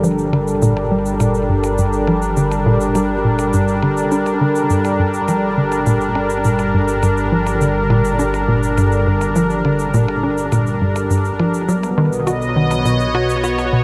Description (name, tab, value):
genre	ambient, sequencer-driven space music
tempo	103 BPM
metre	4/4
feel	straight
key	unclear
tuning	A4 = 439 Hz
part	sweeping resonant pad	sustained chords	0.0-13.8 s	G3 to D#5	-20 LUFS	equal	chorus
part	tight sequencer bass	riff	0.0-13.8 s	G2 to F#4	-20 LUFS	equal	analog chorus, analog delay
part	analog drone	bass	0.0-13.8 s	G1 to B1	-28 LUFS	equal	chorus
part	shaker and percussion blips	percussion	0.0-13.7 s	none	-36 LUFS	equal	analog delay
room	moderate huge ambient reverb, RT60 9.2 s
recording	faint mains hum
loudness	-17 LUFS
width	mono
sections	0.0-13.8 A section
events	none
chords	0.0 Gmadd9; 11.7 B7